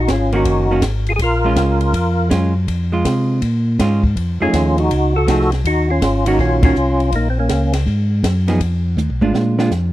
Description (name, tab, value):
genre	soul jazz organ trio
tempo	162 BPM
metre	4/4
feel	swing 65% on 8ths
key	Bb minor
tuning	A4 = 437 Hz
part	percussive tonewheel organ	melody	0.0-7.7 s	Bb3 to Bb4	-18 LUFS	equal	slow rotary speaker, chorus vibrato
part	mellow tonewheel organ	bass	0.0-9.9 s	Gb1 to C3	-17 LUFS	equal	slow rotary speaker
part	compact cocktail drum kit	drums	0.1-9.8 s	hi-hat, kick drum, ride cymbal, snare drum, toms	-20 LUFS	equal	none
part	hollow-body jazz guitar	accompaniment	0.3-9.7 s	Eb3 to G#4	-20 LUFS	right 2 dB	none
room	small room ambience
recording	dry, close 1970s-style studio recording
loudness	-14 LUFS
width	side -15 dB against mid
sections	0.0-9.9 A section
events	band accent 6.6; drum fill 9.0-9.7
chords	0.0 Ebm7; 1.2 Bbm7; 4.2 F7#9; 5.7 Ebm7; 7.1 Bbm7; 8.6 Fm7b5; 9.3 Bb7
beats	0.09 0.46 0.83 | 1.21 1.58 1.95 2.32 | 2.69 3.06 3.43 3.80 | 4.17 4.54 4.91 5.28 | 5.65 6.02 6.39 6.76 | 7.13 7.50 7.87 8.24 | 8.61 8.98 9.35 9.72